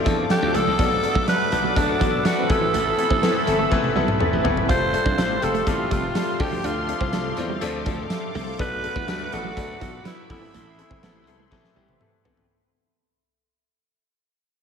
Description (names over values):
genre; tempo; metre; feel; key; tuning
1980s-style pop; 123 BPM; 4/4; straight; A minor; A4 = 440 Hz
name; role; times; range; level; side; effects
bright concert grand piano; accompaniment; 0.0-12.5 s; E3 to E5; -27 LUFS; left 5 dB; none
sweeping resonant pad; sustained chords; 0.0-12.5 s; G4 to D6; -30 LUFS; equal; chorus
direct-recorded clean electric guitar; riff; 0.1-12.4 s; E3 to F4; -32 LUFS; right 7 dB; analog chorus
mellow synth brass; stabs; 0.1-4.7, 11.9-12.5 s; E3 to B4; -31 LUFS; right 2 dB; none
glassy slap bass; bass; 0.1-12.4 s; F1 to E2; -29 LUFS; equal; none
big rock drum kit; drums; 0.1-12.5 s; hi-hat, kick drum, snare drum, tambourine, toms; -26 LUFS; equal; none
raspy alto saxophone; melody; 0.3-12.0 s; D4 to C5; -25 LUFS; right 1 dB; ping-pong delay
room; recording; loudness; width
wet plate reverb, RT60 2.0 s; dreamy mix soaked in reverb; -20 LUFS; side -6 dB against mid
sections
0.0-4.7 A section; 4.7-12.5 B section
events
drum fill 3.7-4.7, 11.5-12.5; fade-out 4.7-12.5; band accent 10.5-12.5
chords
0.0 Dm7; 0.8 Bm7; 2.5 Amadd9; 4.7 Fadd9; 6.4 Dm7; 8.6 Bm7; 10.3 Amadd9